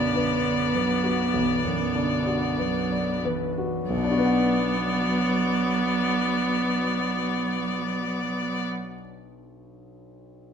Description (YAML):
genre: classical, slow romantic movement for piano quartet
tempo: 44-52 BPM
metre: 4/4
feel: rubato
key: B minor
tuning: A4 = 439 Hz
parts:
  - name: clear violin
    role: melody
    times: 0.0-8.7 s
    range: D5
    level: -30 LUFS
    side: left 5 dB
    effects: none
  - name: warm cello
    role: second line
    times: 0.0-8.7 s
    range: D3 to F#3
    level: -30 LUFS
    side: right 4 dB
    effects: none
  - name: clear concert grand piano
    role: accompaniment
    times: 0.0-10.5 s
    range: B1 to F#5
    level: -29 LUFS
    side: left 3 dB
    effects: none
  - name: rich viola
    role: accompaniment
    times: 0.0-8.7 s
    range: B3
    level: -27 LUFS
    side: right 2 dB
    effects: none
room: moderate recital hall reverb, RT60 1.3 s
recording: minimal, uncompressed stereo recording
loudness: -22 LUFS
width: side -7 dB against mid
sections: 0.0-3.9 A section; 3.9-8.9 B section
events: slowing down 0.0-3.9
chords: 0.0 Bm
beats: 0.16 1.34 2.60 | 3.92 5.16 6.39 7.66